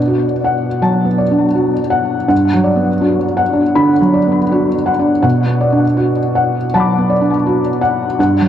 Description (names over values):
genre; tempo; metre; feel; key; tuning
neoclassical minimalist piano; 82 BPM; 4/4; rubato; unclear; A4 = 439 Hz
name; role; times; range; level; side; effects
felt-muted upright piano; solo; 0.0-8.5 s; G2 to D6; -12 LUFS; equal; ping-pong delay
room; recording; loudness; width
wet plate reverb, RT60 2.6 s; dreamy mix soaked in reverb, cassette tape; -12 LUFS; side -10 dB against mid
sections
0.0-8.5 A section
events
none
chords
0.0 Bm7; 2.3 Gmaj7; 5.2 Bm7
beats
0.10 0.84 1.58 | 2.31 3.03 3.77 4.51 | 5.24 5.97 6.70 7.44 | 8.18